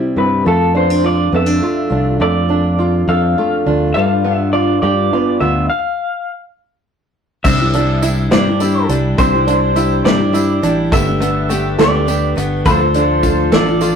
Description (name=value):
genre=indie folk with a building arrangement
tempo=69 BPM (dotted quarters)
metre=6/8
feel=straight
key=C major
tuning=A4 = 440 Hz
part: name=fingerpicked steel-string acoustic guitar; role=accompaniment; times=0.0-5.7 s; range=F2 to F4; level=-18 LUFS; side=equal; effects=none
part: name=open-back banjo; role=arpeggios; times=0.0-14.0 s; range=G3 to C5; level=-20 LUFS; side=right 4 dB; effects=none
part: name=electric guitar through a small old amp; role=melody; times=0.2-14.0 s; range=A4 to F5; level=-18 LUFS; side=equal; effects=tremolo, slapback echo
part: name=fingered electric bass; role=bass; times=0.2-14.0 s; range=G1 to G2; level=-17 LUFS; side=left 1 dB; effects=none
part: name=picked steel-string acoustic guitar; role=accompaniment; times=7.4-14.0 s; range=G2 to A4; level=-19 LUFS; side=left 3 dB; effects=none
part: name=natural country drum kit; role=drums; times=7.4-14.0 s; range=crash cymbal, hi-hat, kick drum, snare drum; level=-19 LUFS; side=left 1 dB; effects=none
part: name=tambourine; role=percussion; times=7.4-13.9 s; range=none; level=-33 LUFS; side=right 5 dB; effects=none
room=moderate studio reverb, RT60 0.6 s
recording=rough rehearsal-room recording, tube saturation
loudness=-12 LUFS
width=side -7 dB against mid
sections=0.0-7.4 A section; 7.4-14.0 B section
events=stop 5.7-7.4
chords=0.5 F6; 4.0 G7; 7.4 Cadd9; 10.9 Gadd9; 12.7 Dm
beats=| 0.46 1.34 | 2.21 3.08 | 3.96 4.83 | 5.70 6.57 | 7.44 8.31 | 9.18 10.05 | 10.92 11.79 | 12.66 13.53